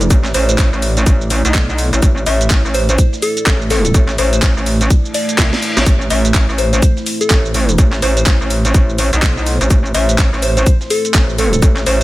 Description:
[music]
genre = bass house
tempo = 125 BPM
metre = 4/4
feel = swing 60% on 16ths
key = A minor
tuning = A4 = 440 Hz
[part]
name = dark analog pad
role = sustained chords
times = 0.0-12.0 s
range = A3 to D5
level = -23 LUFS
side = right 2 dB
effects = chorus, sidechain pumping
[part]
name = metallic wobble bass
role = bass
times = 0.0-12.0 s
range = A1 to C2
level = -15 LUFS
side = equal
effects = chorus, overdrive, sidechain pumping
[part]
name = garage drum kit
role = drums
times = 0.0-12.0 s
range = handclaps, hi-hat, shaker, snare drum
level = -19 LUFS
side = equal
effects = small room ambience
[part]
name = electronic kick drum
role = drums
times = 0.1-11.7 s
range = none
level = -12 LUFS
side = equal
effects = small room ambience
[part]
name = electronic shaker and snare drum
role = drums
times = 0.1-12.0 s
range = none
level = -28 LUFS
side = equal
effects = none
[part]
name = soft synth bell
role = melody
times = 0.3-12.0 s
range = A4 to E5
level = -20 LUFS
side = left 1 dB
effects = chorus, vintage 12-bit sampler grit
[part]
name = reverse cymbal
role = sound effects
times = 5.1-5.9 s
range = none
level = -23 LUFS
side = left 1 dB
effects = none
[sound]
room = digital ambience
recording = none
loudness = -11 LUFS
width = side -17 dB against mid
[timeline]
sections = 0.0-12.0 A section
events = reverse cymbal 5.1-5.9; drum fill 5.4-5.9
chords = 0.0 Am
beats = | 0.10 0.58 1.06 1.54 | 2.02 2.50 2.98 3.46 | 3.94 4.42 4.90 5.38 | 5.86 6.34 6.82 7.30 | 7.78 8.26 8.74 9.22 | 9.70 10.18 10.66 11.14 | 11.62

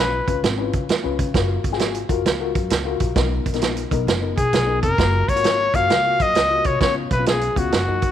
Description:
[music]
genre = uptempo 1960s-style soul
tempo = 132 BPM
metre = 4/4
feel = swing 66% on 8ths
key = F# major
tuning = A4 = 440 Hz
[part]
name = warm trumpet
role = melody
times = 0.0-0.4, 4.4-8.1 s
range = F#4 to E#5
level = -19 LUFS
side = left 2 dB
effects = slapback echo
[part]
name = dark upright piano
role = accompaniment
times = 0.0-8.1 s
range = A#3 to B4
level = -26 LUFS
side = left 11 dB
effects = none
[part]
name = upright bass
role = bass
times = 0.0-8.0 s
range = E#1 to C#3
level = -25 LUFS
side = equal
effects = none
[part]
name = vintage drum kit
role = drums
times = 0.3-8.1 s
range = hi-hat, kick drum, snare drum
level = -22 LUFS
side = right 4 dB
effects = none
[sound]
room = moderate echo chamber reverb, RT60 1.8 s, small room ambience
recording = 1960s-style stereo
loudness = -17 LUFS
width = side -10 dB against mid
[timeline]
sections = 0.0-8.1 A section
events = none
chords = 0.0 C#7; 1.3 F#maj7; 3.2 Bmaj7; 5.0 F#maj7; 6.8 C#7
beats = 0.43 0.89 | 1.34 1.80 2.25 2.71 | 3.16 3.62 4.07 4.53 | 4.98 5.44 5.90 6.35 | 6.81 7.26 7.72

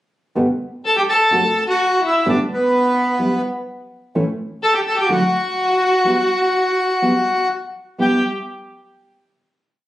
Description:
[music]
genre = tango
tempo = 126 BPM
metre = 4/4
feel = rubato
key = G major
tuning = A4 = 441 Hz
[part]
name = nylon-string guitar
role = accompaniment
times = 0.4-8.2 s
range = F#2 to G4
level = -20 LUFS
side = right 1 dB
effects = none
[part]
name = warm violin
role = second line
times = 0.8-8.2 s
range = B3 to A4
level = -19 LUFS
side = left 1 dB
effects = none
[part]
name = bandoneon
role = melody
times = 0.9-8.2 s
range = B3 to A5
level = -18 LUFS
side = right 1 dB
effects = none
[sound]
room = moderate large studio reverb, RT60 1.2 s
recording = recorded on a phone in the room, studio reverb, compression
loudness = -15 LUFS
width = side -14 dB against mid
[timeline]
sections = 0.4-8.0 A section; 8.0-9.9 final chord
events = none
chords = 0.4 G; 1.3 D7/F#; 2.3 Gadd9; 3.2 Em/G; 4.1 A; 5.1 Dadd9; 6.1 G6; 7.5 N.C.; 8.0 G6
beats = | 0.36 0.84 1.31 1.78 | 2.26 2.73 3.20 3.67 | 4.14 4.62 5.09 5.57 | 6.05 6.54 7.02 7.51 | 8.00

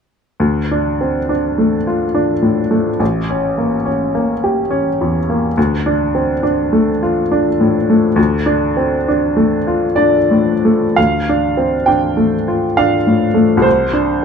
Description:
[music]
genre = classical, romantic nocturne for solo piano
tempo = 58-71 BPM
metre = 3/4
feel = rubato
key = D minor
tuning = A4 = 440 Hz
[part]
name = bright upright piano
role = solo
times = 0.4-14.2 s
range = A1 to G5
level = -12 LUFS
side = equal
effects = none
[sound]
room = moderate large studio reverb, RT60 1.1 s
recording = dark, warm production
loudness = -13 LUFS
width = side -6 dB against mid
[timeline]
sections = 0.4-11.0 A section; 11.0-14.2 B section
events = none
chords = 0.4 Dm; 3.0 A7b9; 5.6 Dm; 13.7 D7(no3)/C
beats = | 0.39 1.29 2.14 | 3.00 3.86 4.71 | 5.57 6.43 7.31 | 8.17 9.07 9.98 | 10.97 11.86 12.77 | 13.65

